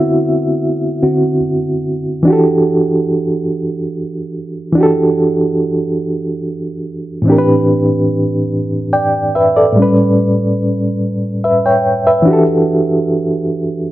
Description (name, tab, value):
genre	R&B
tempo	48 BPM (dotted quarters)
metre	6/8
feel	straight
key	E minor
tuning	A4 = 441 Hz
part	reed electric piano	solo	0.0-13.9 s	A2 to G5	-12 LUFS	equal	fast tremolo
room	light reverb, digital ambience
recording	dark, warm production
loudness	-12 LUFS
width	side -15 dB against mid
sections	0.0-2.3 A section; 2.3-13.9 B section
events	reed electric piano solo 0.0-2.3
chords	0.0 D13; 2.3 Em11; 7.3 Am11; 9.8 A9; 12.3 Em11